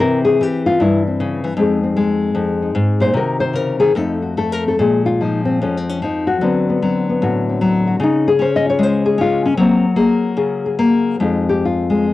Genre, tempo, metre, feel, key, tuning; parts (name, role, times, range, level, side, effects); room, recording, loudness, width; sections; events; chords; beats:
solo jazz; 151 BPM; 4/4; swing 66% on 8ths, rubato; F minor; A4 = 440 Hz
nylon-string guitar; solo; 0.0-12.1 s; F2 to Eb5; -14 LUFS; left 2 dB; cassette tape
light reverb; home recording on cassette; -14 LUFS; side -15 dB against mid
0.0-11.2 A section
nylon-string guitar solo 0.0-11.2
0.0 C; 1.6 Fm7; 3.2 Cdim; 4.0 F7; 4.8 Bb5; 6.4 D6; 8.0 Dbmaj7; 9.6 Gbadd9; 11.2 Fm7
| 0.01 0.41 0.80 1.19 | 1.58 1.98 2.37 2.76 | 3.15 3.55 3.96 4.38 | 4.80 5.21 5.63 6.03 | 6.43 6.83 7.23 7.62 | 8.01 8.40 8.80 9.19 | 9.58 9.98 10.39 10.81 | 11.23 11.64 12.04